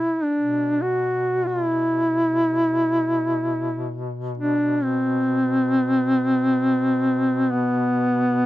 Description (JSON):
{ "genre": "caucasian folk, Caucasian lament", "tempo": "free time", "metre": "none", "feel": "none", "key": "B phrygian", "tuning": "A4 = 440 Hz", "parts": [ { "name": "mellow duduk", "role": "melody", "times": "0.0-8.5 s", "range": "B3 to F#4", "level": "-19 LUFS", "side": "equal", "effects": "none" }, { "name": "warm duduk", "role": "drone", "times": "0.0-8.5 s", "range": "B2", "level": "-29 LUFS", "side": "left 2 dB", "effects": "stereo widening" } ], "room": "light reverb", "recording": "dry, close 1970s-style studio recording", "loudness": "-19 LUFS", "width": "side -15 dB against mid", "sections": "0.0-8.5 A section", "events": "slowing down 7.3-8.5", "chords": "none" }